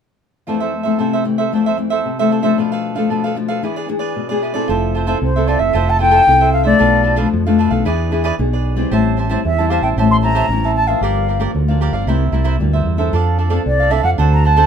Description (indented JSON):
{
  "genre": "samba",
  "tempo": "114 BPM",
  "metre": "4/4",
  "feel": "straight",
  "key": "F major",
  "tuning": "A4 = 439 Hz",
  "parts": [
    { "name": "cavaquinho", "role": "accompaniment", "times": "0.5-14.7 s", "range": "D4 to A5", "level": "-21 LUFS", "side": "right 6 dB", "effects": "none" },
    { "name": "nylon-string guitar", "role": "accompaniment", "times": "0.5-14.7 s", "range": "F2 to A4", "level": "-19 LUFS", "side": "left 5 dB", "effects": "none" },
    { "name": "fingered electric bass", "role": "bass", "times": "4.7-14.6 s", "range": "F1 to F2", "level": "-17 LUFS", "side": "right 1 dB", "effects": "none" },
    { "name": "mellow concert flute", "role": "melody", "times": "5.2-14.7 s", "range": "C5 to C6", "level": "-15 LUFS", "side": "left 1 dB", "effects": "none" }
  ],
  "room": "light reverb",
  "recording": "minimal, uncompressed stereo recording",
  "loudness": "-13 LUFS",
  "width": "side -7 dB against mid",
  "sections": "0.5-4.7 A section; 4.7-14.7 B section",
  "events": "none",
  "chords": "0.5 Fmaj7; 2.6 Bm7b5; 3.6 E7; 4.7 Fmaj7; 6.8 Bm7b5; 7.9 E7; 8.9 Am7; 11.0 Gm7; 12.1 C7; 13.1 F6"
}